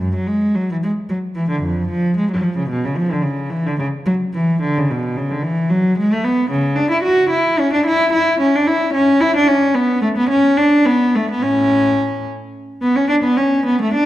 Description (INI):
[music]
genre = classical, baroque-style suite movement for unaccompanied cello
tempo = 73 BPM (dotted quarters)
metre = 12/8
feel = rubato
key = unclear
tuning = A4 = 441 Hz
[part]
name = rich cello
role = solo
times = 0.0-14.1 s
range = F2 to F#4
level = -14 LUFS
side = equal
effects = none
[sound]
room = wet recital hall reverb, RT60 1.7 s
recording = dark, warm production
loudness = -14 LUFS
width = side -14 dB against mid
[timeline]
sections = 0.0-14.1 A section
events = none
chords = none